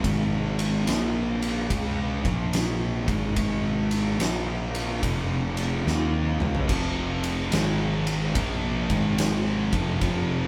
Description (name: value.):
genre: stoner and doom metal.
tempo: 72 BPM.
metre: 4/4.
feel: swing 66% on 8ths.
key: unclear.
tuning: A4 = 442 Hz.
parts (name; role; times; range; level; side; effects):
thick fuzz guitar; riff; 0.0-10.5 s; F2 to Eb4; -31 LUFS; equal; distortion.
thick fuzz guitar; riff; 0.0-10.5 s; F2 to Eb4; -33 LUFS; equal; distortion.
fuzz picked electric bass; bass; 0.0-10.5 s; F1 to Eb2; -33 LUFS; equal; overdrive.
oversized low-tuned drum kit; drums; 0.0-10.3 s; crash cymbal, kick drum, ride cymbal, snare drum, toms; -30 LUFS; equal; none.
high-gain distorted guitar; riff; 6.7-10.5 s; F2 to Bb3; -34 LUFS; equal; distortion.
room: light reverb.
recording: band playing live in one room.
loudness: -26 LUFS.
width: mono.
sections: 0.0-10.5 A section.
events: drum fill 5.9-6.7.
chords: 0.0 Ab5; 0.9 Bb5; 1.7 Db5; 2.1 Bb5; 3.0 Ab5; 4.2 Bb5; 5.0 F5; 5.9 Ab5; 6.7 F5; 7.5 Ab5; 8.4 Bb5; 8.8 Ab5; 9.6 F5.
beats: | 0.04 0.88 1.71 2.54 | 3.37 4.20 5.03 5.86 | 6.70 7.53 8.36 9.18 | 10.01.